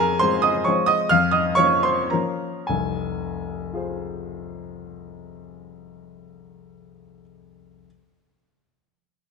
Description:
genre	classical, romantic triple-time dance for piano with dotted rhythms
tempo	98-145 BPM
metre	3/4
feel	rubato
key	F minor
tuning	A4 = 439 Hz
part	warm baby grand piano	solo	0.0-7.9 s	F1 to F6	-20 LUFS	equal	none
room	moderate scoring stage reverb, RT60 2.0 s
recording	close, detailed microphones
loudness	-19 LUFS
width	side -5 dB against mid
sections	0.0-2.7 A section; 2.7-5.7 B section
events	slowing down 0.0-2.7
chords	0.0 Fm; 1.1 Bbm/F; 2.7 Fm

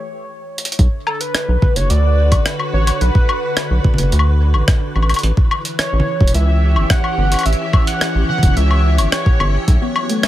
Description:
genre	IDM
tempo	108 BPM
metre	4/4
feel	straight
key	B minor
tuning	A4 = 440 Hz
part	warm velvety synth lead	melody	0.0-10.3 s	A4 to F#5	-23 LUFS	right 1 dB	chorus, analog delay
part	jungle sampler-style drum kit	drums	0.6-10.3 s	hi-hat, rim click, toms, woodblock	-20 LUFS	left 1 dB	dub echo
part	soft string machine	sustained chords	1.0-10.3 s	D3 to C#5	-24 LUFS	equal	ensemble chorus
part	rubbery square bass	bass	0.8-9.8 s	E1 to D2	-14 LUFS	equal	none
part	electronic kick drum	drums	0.8-9.8 s	none	-14 LUFS	equal	none
part	warbly dusty pluck	arpeggios	9.8-10.2 s	A3 to B3	-20 LUFS	left 3 dB	analog chorus, tape echo
room	digital ambience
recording	echo-heavy mix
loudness	-13 LUFS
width	side -14 dB against mid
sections	0.8-10.3 A section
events	break 0.0-0.8; drum fill 0.5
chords	0.0 N.C.; 0.8 Bm; 5.2 A7 (rootless); 9.7 B7sus2

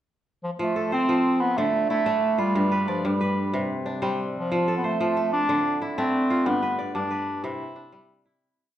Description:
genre	west african traditional, West African string and xylophone music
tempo	123 BPM (dotted quarters)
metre	12/8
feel	straight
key	F lydian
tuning	A4 = 440 Hz
part	bright bass clarinet	melody	0.4-8.2 s	F3 to E4	-24 LUFS	right 1 dB	none
part	kora	arpeggios	0.6-8.8 s	G2 to D5	-26 LUFS	equal	none
room	wet recital hall reverb, RT60 1.5 s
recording	recorded in a church or concert hall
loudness	-22 LUFS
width	side -11 dB against mid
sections	0.0-0.6 pickup bar; 0.6-8.4 A section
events	fade-out 6.5-8.4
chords	0.0 N.C.; 0.6 F; 1.6 Dm; 2.6 G; 3.5 C5; 4.5 F; 5.5 Dm; 6.5 G; 7.4 C

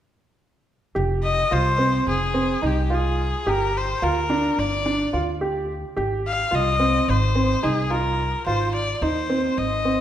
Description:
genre	contemporary instrumental, contemporary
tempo	216 BPM (eighths)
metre	9/8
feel	straight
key	F dorian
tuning	A4 = 440 Hz
part	clear baby grand piano	arpeggios	0.9-10.0 s	C4 to G4	-24 LUFS	right 2 dB	none
part	upright bass	bass	1.0-10.0 s	F1 to Eb2	-25 LUFS	equal	none
part	clear erhu	melody	1.2-10.0 s	G4 to F5	-24 LUFS	left 3 dB	none
room	moderate scoring stage reverb, RT60 1.9 s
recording	minimal, uncompressed stereo recording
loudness	-20 LUFS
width	side -10 dB against mid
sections	1.0-10.0 A section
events	none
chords	1.0 Fm; 3.5 Gm; 6.0 Fm9/Ab; 8.5 Ab

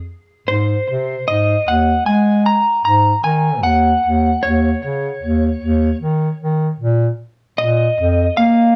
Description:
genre	post-rock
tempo	76 BPM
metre	4/4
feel	straight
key	unclear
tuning	A4 = 440 Hz
part	mellow bass clarinet	bass	0.0-8.8 s	Eb2 to Bb3	-18 LUFS	equal	none
part	electric slide guitar	melody	0.5-8.8 s	C5 to Bb5	-19 LUFS	equal	analog delay
room	moderate large studio reverb, RT60 0.9 s, studio ambience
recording	small room ambience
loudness	-16 LUFS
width	mono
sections	0.5-8.8 A section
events	none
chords	0.5 Ab; 3.6 Ebm7; 6.8 Bb5

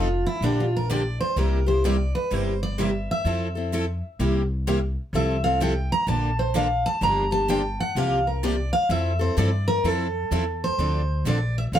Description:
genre	acoustic string swing (jazz manouche)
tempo	127 BPM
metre	4/4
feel	swing 63% on 8ths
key	F major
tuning	A4 = 444 Hz
part	picked steel-string acoustic guitar	melody	0.0-11.8 s	D4 to Bb5	-25 LUFS	right 1 dB	slapback echo
part	picked steel-string acoustic guitar	accompaniment	0.0-11.8 s	C3 to A4	-27 LUFS	left 3 dB	none
part	picked steel-string acoustic guitar	accompaniment	0.0-11.8 s	C3 to A4	-30 LUFS	right 5 dB	none
part	upright bass	bass	0.0-11.8 s	F1 to G2	-25 LUFS	equal	none
room	little or no reverb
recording	close, detailed microphones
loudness	-21 LUFS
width	side -10 dB against mid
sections	0.0-10.8 A section; 10.8-11.8 B section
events	steel-string acoustic guitar solo 0.0-10.8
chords	0.4 Bb6; 1.4 C7; 3.3 Fmaj7; 4.2 C7; 5.1 Fmaj7/C; 6.1 Bbmaj7; 7.0 Gm7; 8.0 C7sus4; 8.9 Fmaj7; 10.8 Dm7

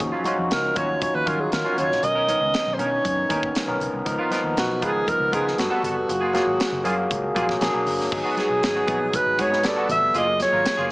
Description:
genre	polished 1980s jazz-funk pop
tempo	118 BPM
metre	4/4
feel	straight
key	unclear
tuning	A4 = 440 Hz
part	overdriven tine electric piano	accompaniment	0.0-10.9 s	D#3 to F5	-25 LUFS	left 1 dB	lush chorus
part	semi-hollow electric guitar	riff	0.0-10.9 s	Gb3 to Cb5	-30 LUFS	right 2 dB	analog chorus
part	vintage muted fingered electric bass	bass	0.0-10.9 s	F1 to Eb3	-33 LUFS	equal	none
part	crisp fusion drum kit	drums	0.0-10.8 s	crash cymbal, hi-hat, kick drum, snare drum	-29 LUFS	equal	gated reverb
part	congas	percussion	0.0-10.8 s	none	-39 LUFS	left 1 dB	none
part	breathy alto saxophone	melody	0.5-10.9 s	Gb4 to Fb5	-23 LUFS	right 1 dB	none
room	light reverb, small room ambience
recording	small speaker sound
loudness	-20 LUFS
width	side -22 dB against mid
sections	0.0-8.1 A section; 8.1-10.9 B section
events	none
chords	0.0 Ebm9; 2.0 Bmaj9; 4.1 Db13; 5.6 Gmaj9; 6.1 Gbmaj9; 7.6 Bbaug7; 8.1 Abm7; 9.6 Gmaj9; 10.2 Gbmaj9

